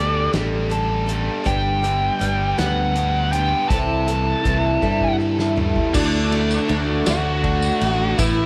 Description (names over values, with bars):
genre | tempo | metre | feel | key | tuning
folk rock and heartland rock | 53 BPM (dotted quarters) | 6/8 | straight | D mixolydian | A4 = 440 Hz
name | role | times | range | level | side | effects
biting lead guitar | melody | 0.0-8.5 s | D4 to A5 | -26 LUFS | equal | overdrive
picked twelve-string acoustic guitar | accompaniment | 0.0-8.5 s | G2 to A4 | -27 LUFS | equal | none
biting overdriven guitar | riff | 0.0-8.5 s | G2 to A4 | -28 LUFS | equal | none
fingered electric bass | bass | 0.0-8.5 s | G1 to G2 | -25 LUFS | equal | none
natural country drum kit | drums | 0.3-8.4 s | crash cymbal, hi-hat, kick drum, ride cymbal, snare drum, toms | -28 LUFS | equal | none
reed electric piano | accompaniment | 5.9-8.5 s | E4 to D5 | -32 LUFS | equal | overdrive, fast tremolo
tambourine | percussion | 5.9-8.4 s | none | -34 LUFS | equal | none
warm studio string section | sustained chords | 6.0-8.5 s | A3 to F#4 | -33 LUFS | equal | none
room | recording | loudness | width
light reverb, studio ambience | lossy compression artefacts | -20 LUFS | mono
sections
0.0-5.9 A section; 5.9-8.5 B section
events
drum fill 4.8-5.9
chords
0.0 Dsus4; 1.5 G; 3.7 C6; 5.9 D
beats
0.33 | 1.46 2.58 | 3.70 4.83 | 5.95 7.07 | 8.19